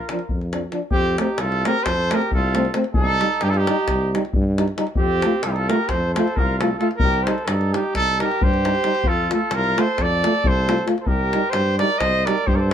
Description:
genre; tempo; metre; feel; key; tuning
balkan folk, Balkan brass band; 266 BPM (eighths); 9/8; straight; F mixolydian; A4 = 437 Hz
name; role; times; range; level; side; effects
mellow trumpet; melody; 0.0-12.7 s; G4 to Eb5; -22 LUFS; right 1 dB; plate reverb
clear flugelhorn; second line; 0.0-12.7 s; C4 to C5; -28 LUFS; right 2 dB; none
clear euphonium; accompaniment; 0.1-12.4 s; C4 to F4; -26 LUFS; left 7 dB; none
warm euphonium; accompaniment; 0.1-12.7 s; F3 to A3; -26 LUFS; right 6 dB; none
davul; percussion; 0.1-12.7 s; none; -24 LUFS; left 2 dB; none
mellow tuba; bass; 0.3-12.7 s; C2 to G2; -23 LUFS; equal; none
room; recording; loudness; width
moderate small room reverb, RT60 0.5 s; none; -18 LUFS; side -9 dB against mid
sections
0.9-12.7 A section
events
none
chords
0.0 Bb; 0.9 F; 2.9 Cm; 5.0 F; 7.0 Cm; 9.0 F; 11.1 Cm

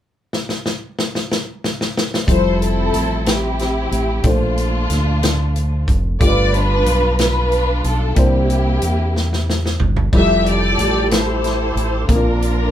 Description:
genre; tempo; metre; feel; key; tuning
slow gospel; 61 BPM (dotted quarters); 6/8; straight; F major; A4 = 440 Hz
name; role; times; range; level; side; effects
natural country drum kit; drums; 0.3-12.6 s; hi-hat, kick drum, snare drum, splash cymbal, toms; -19 LUFS; equal; none
warm studio string section; melody; 2.3-12.7 s; A3 to E5; -20 LUFS; left 1 dB; none
dark baby grand piano; accompaniment; 2.3-12.7 s; G2 to C5; -23 LUFS; left 1 dB; none
fingered electric bass; bass; 2.3-12.7 s; F1 to E2; -19 LUFS; equal; none
tonewheel organ; sustained chords; 10.1-12.7 s; F3 to Bb4; -25 LUFS; right 3 dB; slow rotary speaker, chorus vibrato
room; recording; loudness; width
moderate small room reverb, RT60 0.5 s; band playing live in one room; -15 LUFS; side -11 dB against mid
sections
0.3-2.3 A section; 2.3-12.7 B section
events
drum fill 0.3-2.3, 9.2-10.1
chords
0.3 N.C.; 2.3 Fmaj9; 4.2 Bbmaj9; 6.2 G9; 8.2 C9; 10.1 Fmaj9; 12.1 Bb

